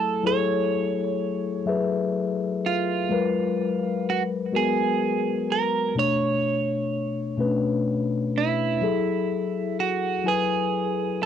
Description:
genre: R&B.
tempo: 42 BPM (dotted quarters).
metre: 6/8.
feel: straight.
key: unclear.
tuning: A4 = 440 Hz.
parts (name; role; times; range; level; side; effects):
clean electric guitar; melody; 0.0-11.3 s; E4 to C#5; -26 LUFS; right 9 dB; none.
mellow tine electric piano; accompaniment; 0.0-11.3 s; B2 to G#5; -24 LUFS; left 5 dB; slow stereo tremolo, cassette tape.
room: moderate small room ambience, RT60 0.5 s.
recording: home recording on cassette.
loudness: -22 LUFS.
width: side -9 dB against mid.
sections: 0.0-11.3 A section.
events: none.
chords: 0.0 F#m9; 3.1 G#m9; 6.0 Bm9; 8.8 F#m9.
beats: | 0.25 1.68 | 3.11 4.54 | 5.96 7.39 | 8.82 10.25.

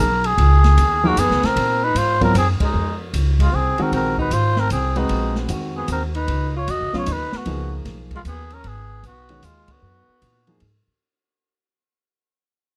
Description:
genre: modal jazz.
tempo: 152 BPM.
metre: 3/4.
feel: swing 65% on 8ths.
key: unclear.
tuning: A4 = 440 Hz.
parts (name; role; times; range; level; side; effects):
trumpet with cup mute; melody; 0.0-10.6 s; Eb4 to Eb5; -24 LUFS; equal; none.
upright bass; bass; 0.0-10.9 s; Ab1 to Bb2; -22 LUFS; equal; none.
open jazz drum kit; drums; 0.2-10.7 s; hi-hat, kick drum, ride cymbal, snare drum; -31 LUFS; equal; none.
clear alto saxophone; second line; 1.0-10.6 s; Ab3 to Gb4; -30 LUFS; equal; none.
warm grand piano; accompaniment; 1.0-10.6 s; Db3 to Cb5; -26 LUFS; equal; none.
room: little or no reverb.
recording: close, detailed microphones.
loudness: -19 LUFS.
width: mono.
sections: 0.0-11.0 A section.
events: fade-out 1.6-11.0; band accent 2.5, 9.6.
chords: 0.0 Db7sus2; 1.6 Bb9sus4; 6.3 Db9sus4.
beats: | 0.37 0.77 1.16 | 1.56 1.95 2.34 | 2.74 3.13 3.53 | 3.92 4.31 4.71 | 5.10 5.50 5.89 | 6.28 6.68 7.07 | 7.46 7.86 8.25 | 8.64 9.04 9.43 | 9.82 10.21 10.61.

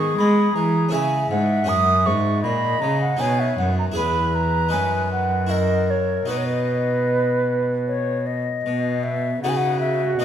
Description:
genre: classical, baroque-style sonata movement with continuo.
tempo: 78 BPM.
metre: 3/4.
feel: straight.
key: B major.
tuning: A4 = 440 Hz.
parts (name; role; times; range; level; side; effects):
bright baroque flute; melody; 0.0-10.2 s; G#4 to G#5; -25 LUFS; left 7 dB; none.
baroque flute; second line; 0.0-10.2 s; F#4 to D#6; -23 LUFS; right 4 dB; none.
harpsichord; accompaniment; 0.0-10.2 s; E2 to B4; -27 LUFS; left 1 dB; none.
warm cello; bass; 0.0-10.2 s; E2 to G#3; -23 LUFS; right 1 dB; none.
room: moderate scoring stage reverb, RT60 2.0 s.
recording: none.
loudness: -18 LUFS.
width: side -9 dB against mid.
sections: 0.0-8.7 A section; 8.7-10.2 B section.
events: none.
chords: 0.0 G#m; 0.9 C#m; 1.7 F#; 3.2 B; 4.0 E; 4.7 B/F#; 5.5 F#7; 6.3 B.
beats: 0.18 0.93 | 1.69 2.44 3.20 | 3.96 4.73 5.50 | 6.29 7.09 7.88 | 8.66 9.42 10.19.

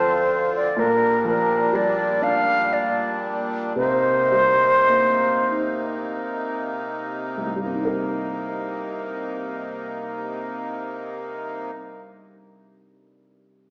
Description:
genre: celtic folk, Celtic slow air.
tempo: 40-66 BPM.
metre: 3/4.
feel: rubato.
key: C minor.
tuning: A4 = 439 Hz.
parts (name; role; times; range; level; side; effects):
bright wooden flute; melody; 0.0-6.1 s; Bb4 to F5; -21 LUFS; equal; none.
warm upright piano; accompaniment; 0.0-13.7 s; C2 to Bb4; -32 LUFS; equal; none.
accordion; sustained chords; 0.0-11.7 s; Bb2 to F4; -30 LUFS; equal; light tremolo tuning.
room: wet scoring stage reverb, RT60 2.0 s.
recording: recorded in a church or concert hall, small speaker sound.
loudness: -23 LUFS.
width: mono.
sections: 0.0-7.6 A section; 7.6-12.0 B section.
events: slowing down 0.8-7.6.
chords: 0.0 Dm7; 0.8 Bb6; 3.8 Cm7.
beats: | 0.76 1.72 2.71 | 3.75 4.90 6.18 | 7.61 9.06 10.51.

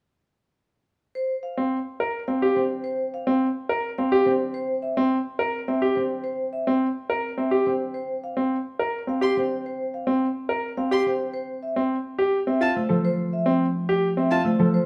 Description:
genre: classical, minimalist pattern music.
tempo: 106 BPM.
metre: 3/4.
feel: straight.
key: unclear.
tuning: A4 = 439 Hz.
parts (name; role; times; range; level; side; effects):
vibraphone with medium hard mallets; melody; 1.2-14.9 s; C5 to F5; -32 LUFS; equal; none.
bright grand piano; arpeggios; 1.6-14.8 s; C4 to Bb4; -25 LUFS; equal; none.
concert harp; accompaniment; 2.6-14.9 s; F3 to C4; -31 LUFS; equal; none.
rich violin; arpeggios; 9.2-14.4 s; A5 to C6; -31 LUFS; equal; none.
room: wet large studio reverb, RT60 1.1 s.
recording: heard from further back in the room.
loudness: -24 LUFS.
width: mono.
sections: 1.2-14.9 A section.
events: none.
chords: 1.2 N.C.; 11.3 Fmaj7.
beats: | 1.15 1.72 2.28 | 2.85 3.42 3.98 | 4.55 5.12 5.68 | 6.25 6.81 7.38 | 7.95 8.51 9.08 | 9.64 10.21 10.78 | 11.34 11.91 12.47 | 13.04 13.61 14.17 | 14.74.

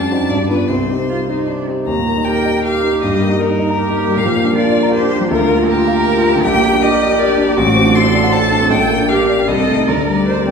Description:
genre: quick classical-period movement for piano trio.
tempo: 157 BPM.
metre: 3/4.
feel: straight.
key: Eb major, G minor from 6.4 s.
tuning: A4 = 438 Hz.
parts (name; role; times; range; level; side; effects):
rich violin; melody; 0.0-10.5 s; G4 to D6; -19 LUFS; left 4 dB; none.
rich cello; second line; 0.0-10.5 s; C4 to C5; -20 LUFS; right 5 dB; none.
warm concert grand piano; accompaniment; 0.0-10.5 s; A1 to Bb5; -14 LUFS; equal; none.
room: wet scoring stage reverb, RT60 1.7 s.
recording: heard from further back in the room, lossy compression artefacts.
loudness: -12 LUFS.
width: side -6 dB against mid.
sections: 0.0-1.9 A section; 1.9-10.5 B section.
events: none.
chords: 0.3 G7; 0.7 Cm; 1.9 Eb; 3.0 Eb/G; 4.2 Bb; 5.3 Bb/D; 6.4 Gm/Bb; 7.6 D7/A; 8.7 Gm/Bb; 9.5 Adim/C; 9.9 Gm/D.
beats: 0.31 | 0.70 1.09 1.48 | 1.87 2.26 2.64 | 3.02 3.41 3.79 | 4.17 4.55 4.93 | 5.31 5.68 6.06 | 6.44 6.82 7.20 | 7.57 7.95 8.34 | 8.72 9.10 9.48 | 9.88 10.28.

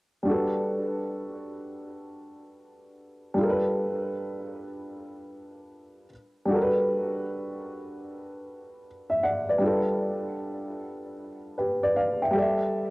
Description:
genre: hip hop.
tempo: 77 BPM.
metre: 4/4.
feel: swing 65% on 16ths.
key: G major.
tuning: A4 = 440 Hz.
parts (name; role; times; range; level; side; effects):
dark upright piano; solo; 0.2-12.9 s; G3 to G5; -26 LUFS; equal; cassette tape, tape echo.
room: moderate spring reverb, RT60 1.9 s, small room ambience.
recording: home recording on cassette.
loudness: -25 LUFS.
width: side -24 dB against mid.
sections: 0.3-6.5 A section; 6.5-12.9 B section.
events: none.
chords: 0.3 Gmaj9; 3.4 G7; 6.1 N.C.; 6.5 Gmaj9; 9.6 G7; 12.3 Gsus2.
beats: | 0.26 1.04 1.82 2.60 | 3.38 4.16 4.94 5.71 | 6.49 7.27 8.05 8.83 | 9.61 10.39 11.17 11.95 | 12.73.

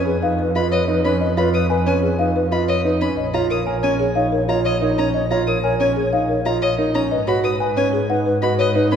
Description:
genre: classical, minimalist pattern music.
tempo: 183 BPM.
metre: 6/4.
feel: straight.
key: unclear.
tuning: A4 = 440 Hz.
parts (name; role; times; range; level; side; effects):
folk marimba with soft mallets; melody; 0.0-9.0 s; G#4 to G#5; -22 LUFS; left 6 dB; none.
warm concert grand piano; arpeggios; 0.0-9.0 s; C#4 to B4; -22 LUFS; right 5 dB; none.
clear double bass; bass; 0.0-9.0 s; A#1 to G#2; -23 LUFS; right 2 dB; none.
alto flute; second line; 0.1-9.0 s; B4 to C#5; -24 LUFS; left 1 dB; none.
clear violin; arpeggios; 0.6-9.0 s; D#5 to D#6; -28 LUFS; left 3 dB; none.
room: wet church reverb, RT60 3.1 s.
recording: recorded in a church or concert hall.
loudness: -16 LUFS.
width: side -8 dB against mid.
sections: 0.0-9.0 A section.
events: none.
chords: 0.0 C#7/E#; 3.2 A#m7; 7.1 G#m7.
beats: 0.22 0.55 0.88 | 1.21 1.54 1.86 2.19 2.52 2.85 | 3.17 3.50 3.83 4.16 4.49 4.82 | 5.14 5.47 5.80 6.13 6.45 6.78 | 7.11 7.44 7.76 8.09 8.42 8.75.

